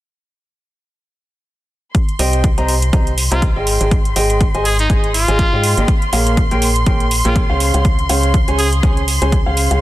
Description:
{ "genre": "piano house", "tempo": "122 BPM", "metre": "4/4", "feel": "swing 56% on 16ths", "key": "Ab major", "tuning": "A4 = 436 Hz", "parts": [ { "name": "muted chamber violin section", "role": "sustained chords", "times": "1.9-9.8 s", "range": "C6", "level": "-24 LUFS", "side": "equal", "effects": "sidechain pumping" }, { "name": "electronic hi-hat", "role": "drums", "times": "1.9-9.8 s", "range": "none", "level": "-22 LUFS", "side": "right 2 dB", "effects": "none" }, { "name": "electronic kick drum", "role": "drums", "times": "1.9-9.4 s", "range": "none", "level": "-15 LUFS", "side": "equal", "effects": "overdrive" }, { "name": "warm upright piano", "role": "riff", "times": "2.2-9.8 s", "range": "Ab3 to Bb5", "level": "-19 LUFS", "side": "equal", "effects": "sidechain pumping, dub echo" }, { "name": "organ-like FM bass", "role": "bass", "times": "2.2-9.8 s", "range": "Ab1 to Ab2", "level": "-17 LUFS", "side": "equal", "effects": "sidechain pumping" }, { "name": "bright trumpet", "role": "melody", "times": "3.3-8.7 s", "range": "Eb4 to Ab4", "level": "-23 LUFS", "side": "equal", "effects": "dub echo" } ], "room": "light reverb", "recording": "dense, heavily limited modern master", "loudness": "-12 LUFS", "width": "side -15 dB against mid", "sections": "1.9-9.8 A section", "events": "none", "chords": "1.9 Abmaj7; 5.9 Bbm7; 7.6 Dbmaj7", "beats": "| 1.95 2.44 2.93 3.42 | 3.92 4.41 4.90 5.39 | 5.88 6.37 6.87 7.36 | 7.85 8.34 8.83 9.32" }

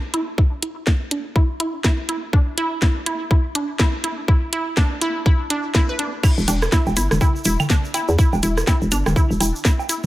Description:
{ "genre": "minimal techno", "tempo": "123 BPM", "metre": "4/4", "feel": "swing 59% on 16ths", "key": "E minor", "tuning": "A4 = 440 Hz", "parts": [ { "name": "resonant blip pluck", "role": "riff", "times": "0.1-10.0 s", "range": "D4 to B4", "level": "-25 LUFS", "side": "right 1 dB", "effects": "chorus, sidechain pumping, digital delay" }, { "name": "garage drum kit", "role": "drums", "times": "0.1-10.0 s", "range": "crash cymbal, hi-hat, snare drum", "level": "-25 LUFS", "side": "equal", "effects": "none" }, { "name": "electronic kick drum", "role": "drums", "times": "0.4-9.8 s", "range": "none", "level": "-16 LUFS", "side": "equal", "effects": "none" }, { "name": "booming analog drum machine", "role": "percussion", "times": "6.2-10.1 s", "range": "claves, rim click, toms, woodblock", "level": "-24 LUFS", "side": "right 2 dB", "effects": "none" }, { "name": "egg shaker", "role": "percussion", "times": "6.2-10.1 s", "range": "none", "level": "-29 LUFS", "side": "right 2 dB", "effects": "none" }, { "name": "hollow knocking FM bass", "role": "bass", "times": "6.4-9.5 s", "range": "E1 to E2", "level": "-19 LUFS", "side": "equal", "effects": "sidechain pumping" } ], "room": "light reverb, digital ambience", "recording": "none", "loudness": "-17 LUFS", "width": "side -16 dB against mid", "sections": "0.0-6.2 A section; 6.2-10.1 B section", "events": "build-up 0.0-6.2; filter sweep on synth pluck 0.0-6.2; drop 6.2-10.1", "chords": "0.0 E5", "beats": "| 0.38 0.87 1.36 1.84 | 2.33 2.82 3.31 3.79 | 4.28 4.77 5.26 5.75 | 6.23 6.72 7.21 7.70 | 8.19 8.67 9.16 9.65" }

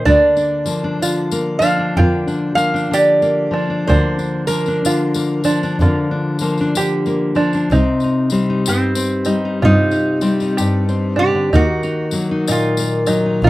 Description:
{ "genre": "acoustic folk duo or small band", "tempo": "63 BPM", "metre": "4/4", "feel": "swing 62% on 8ths", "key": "Bb major", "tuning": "A4 = 441 Hz", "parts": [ { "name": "lap resonator guitar", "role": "melody", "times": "0.0-13.5 s", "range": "C4 to G5", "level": "-18 LUFS", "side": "right 2 dB", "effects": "none" }, { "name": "nylon-string guitar", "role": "accompaniment", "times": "0.0-13.5 s", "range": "G2 to Eb4", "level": "-18 LUFS", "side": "left 2 dB", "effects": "none" }, { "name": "open-back banjo", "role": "arpeggios", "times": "0.1-13.5 s", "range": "D4 to G4", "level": "-22 LUFS", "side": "right 3 dB", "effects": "none" }, { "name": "dark double bass", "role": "bass", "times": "0.1-13.5 s", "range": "Bb1 to G2", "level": "-15 LUFS", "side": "equal", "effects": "none" }, { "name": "tambourine", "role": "percussion", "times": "0.1-13.2 s", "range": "none", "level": "-29 LUFS", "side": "left 8 dB", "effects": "none" } ], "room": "little or no reverb", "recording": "dry, close 1970s-style studio recording", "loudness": "-14 LUFS", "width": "side -17 dB against mid", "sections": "0.0-7.7 A section; 7.7-13.5 B section", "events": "resonator guitar played with a steel bar solo 0.0-7.7", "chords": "0.1 Bb6/D; 7.7 Cm; 11.5 Ebm", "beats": "| 0.06 1.02 1.98 2.93 | 3.89 4.85 5.80 6.76 | 7.71 8.67 9.62 10.58 | 11.53 12.48 13.44" }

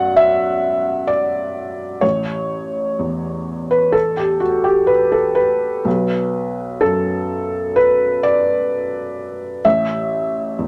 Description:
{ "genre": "neoclassical minimalist piano", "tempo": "63 BPM", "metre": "4/4", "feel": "rubato", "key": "B minor", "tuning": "A4 = 440 Hz", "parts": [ { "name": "felt-muted upright piano", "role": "solo", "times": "0.0-10.7 s", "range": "A1 to F#5", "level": "-18 LUFS", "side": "equal", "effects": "none" } ], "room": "wet studio reverb, RT60 0.5 s", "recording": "none", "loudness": "-18 LUFS", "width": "mono", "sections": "0.0-10.7 A section", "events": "none", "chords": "0.0 Bm; 2.0 A13; 5.9 Bm; 9.6 F#m7/A (rootless)", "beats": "0.18 1.09 | 2.03 2.99 3.94 4.89 | 5.86 6.82 7.77 8.71 | 9.65 10.57" }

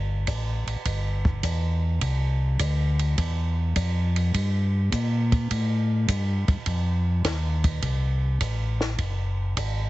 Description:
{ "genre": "soul jazz organ trio", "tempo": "103 BPM", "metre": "4/4", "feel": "swing 68% on 8ths", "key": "C mixolydian", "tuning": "A4 = 441 Hz", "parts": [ { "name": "mellow tonewheel organ", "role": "bass", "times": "0.0-9.9 s", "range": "F#1 to Bb2", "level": "-24 LUFS", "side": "equal", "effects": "overdrive, chorus vibrato, slow rotary speaker" }, { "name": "compact cocktail drum kit", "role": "drums", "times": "0.3-9.8 s", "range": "hi-hat, kick drum, ride cymbal, snare drum", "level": "-28 LUFS", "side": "right 1 dB", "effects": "none" } ], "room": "little or no reverb", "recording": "heavily compressed radio sound, multiband compression, nothing above 8.0 kHz", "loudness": "-22 LUFS", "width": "side -17 dB against mid", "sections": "0.0-9.9 A section", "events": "none", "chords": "none", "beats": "0.28 0.86 1.44 | 2.02 2.60 3.18 3.76 | 4.34 4.92 5.50 6.08 | 6.66 7.24 7.82 8.40 | 8.98 9.57" }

